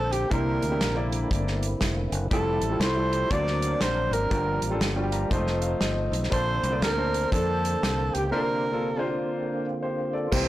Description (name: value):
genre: uptempo gospel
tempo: 120 BPM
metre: 4/4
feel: swing 63% on 8ths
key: unclear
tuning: A4 = 440 Hz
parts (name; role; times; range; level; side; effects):
- breathy tenor saxophone; melody; 0.0-9.1 s; G4 to D5; -28 LUFS; right 2 dB; none
- hollow-body jazz guitar; melody; 0.0-9.3 s; C4 to A5; -34 LUFS; left 2 dB; tape echo
- mellow French horn section; sustained chords; 0.0-10.3 s; F3 to C5; -40 LUFS; left 1 dB; none
- percussive tonewheel organ; sustained chords; 0.0-10.5 s; D3 to C5; -33 LUFS; right 1 dB; slow rotary speaker, chorus vibrato
- fingered electric bass; bass; 0.0-10.5 s; F1 to F2; -29 LUFS; equal; tube saturation
- natural country drum kit; drums; 0.1-10.5 s; crash cymbal, hi-hat, kick drum, snare drum; -29 LUFS; equal; soft clipping on kick
- warm concert grand piano; accompaniment; 0.3-10.5 s; G2 to Bb5; -30 LUFS; left 1 dB; none
- tambourine; percussion; 10.3-10.5 s; none; -33 LUFS; right 2 dB; none
room: light reverb, small room reverb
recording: blown-out, overdriven recording, overdrive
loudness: -23 LUFS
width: side -15 dB against mid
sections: 0.0-10.3 A section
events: grand piano fill 4.8-6.3; break 8.3-10.3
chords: 0.3 C9; 2.3 Fmaj9; 3.3 D7alt; 4.3 Gm7; 5.3 F7; 6.3 Bbmaj9; 8.3 C9sus4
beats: | 0.31 0.81 1.31 1.81 | 2.31 2.81 3.31 3.82 | 4.32 4.82 5.32 5.82 | 6.32 6.82 7.33 7.83 | 8.33 8.83 9.33 9.83 | 10.33